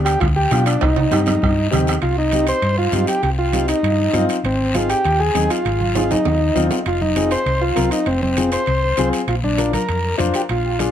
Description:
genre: latin, cumbia.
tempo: 198 BPM.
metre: 4/4.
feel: straight.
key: C minor.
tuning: A4 = 440 Hz.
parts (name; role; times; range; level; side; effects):
warm upright piano; accompaniment; 0.0-10.9 s; B3 to C5; -23 LUFS; left 4 dB; none.
hollow-body short-scale fingered electric bass; bass; 0.0-10.9 s; F1 to B2; -21 LUFS; equal; none.
combo organ; melody; 0.1-10.9 s; C4 to C5; -19 LUFS; equal; tape echo.
bombo; percussion; 0.1-2.0 s; none; -22 LUFS; right 1 dB; none.
guiro; percussion; 0.1-10.9 s; none; -30 LUFS; left 5 dB; none.
timbales; percussion; 0.1-10.9 s; none; -28 LUFS; right 6 dB; none.
congas; percussion; 0.4-10.9 s; none; -27 LUFS; right 2 dB; none.
room: moderate small room reverb, RT60 0.5 s.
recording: none.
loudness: -16 LUFS.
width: side -10 dB against mid.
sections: 0.0-2.0 A section; 2.0-10.9 B section.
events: drum fill 0.8-2.0, 6.0-6.9.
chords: 0.0 G7; 0.8 Cm; 4.4 Ab; 6.9 Fm; 9.3 Bb.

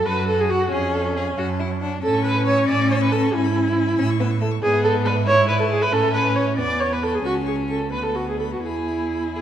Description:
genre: quick classical-period movement for string quartet.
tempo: 92 BPM (dotted quarters).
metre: 6/8.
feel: rubato.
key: unclear.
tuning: A4 = 440 Hz.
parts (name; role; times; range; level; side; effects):
rich violin; melody; 0.0-9.4 s; C#5 to E6; -36 LUFS; left 10 dB; none.
rich violin; second line; 0.0-9.4 s; A3 to A4; -25 LUFS; left 3 dB; none.
warm viola; accompaniment; 0.0-9.4 s; C#4 to D5; -21 LUFS; right 1 dB; none.
clear cello; bass; 0.1-9.4 s; C#2 to A2; -25 LUFS; right 3 dB; none.
room: wet recital hall reverb, RT60 1.5 s.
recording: none.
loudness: -18 LUFS.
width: side -10 dB against mid.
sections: 0.0-9.4 A section.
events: none.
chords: 0.0 F#m; 0.7 C#/E#; 1.4 F#m; 2.0 A; 3.3 E/G#; 4.0 A; 4.6 E7/G#; 5.9 A; 6.6 E; 7.2 A/C#; 7.9 Bm7/D; 8.6 E.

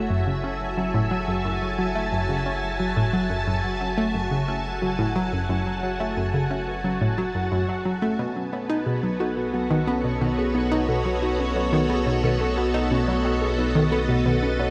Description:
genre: ambient, sequencer-driven space music.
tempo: 89 BPM.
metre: 4/4.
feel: straight.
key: F# dorian.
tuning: A4 = 440 Hz.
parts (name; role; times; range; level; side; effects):
string machine, full ensemble; sustained chords; 0.0-14.7 s; B3 to A5; -28 LUFS; equal; ensemble chorus.
warbly dusty pluck; arpeggios; 0.0-14.7 s; C#4 to F#5; -36 LUFS; equal; chorus, tape echo.
analog pluck; riff; 0.0-14.7 s; F#2 to F#4; -27 LUFS; equal; chorus, tape echo.
round analog bass; bass; 0.0-14.7 s; F#1 to B1; -34 LUFS; equal; none.
room: wet scoring stage reverb, RT60 2.1 s.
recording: none.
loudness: -24 LUFS.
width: mono.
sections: 0.0-14.7 A section.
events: fade-in on synth arpeggio sound 0.0-14.7.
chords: 0.0 F#m7; 8.2 B7.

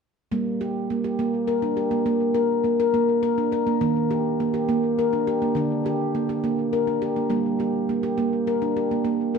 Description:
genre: world meditative, meditative tuned percussion.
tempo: 69 BPM (dotted quarters).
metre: 6/8.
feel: straight.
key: G minor.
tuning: A4 = 442 Hz.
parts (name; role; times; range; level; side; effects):
handpan; solo; 0.3-9.4 s; D3 to Bb4; -21 LUFS; equal; tape echo.
room: wet echo chamber reverb, RT60 1.4 s, studio reverb.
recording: none.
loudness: -21 LUFS.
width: side -6 dB against mid.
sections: 0.3-9.4 A section.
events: none.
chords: 0.3 Gm; 2.1 N.C.; 3.8 Eb; 5.6 Gm/D; 7.3 Gm.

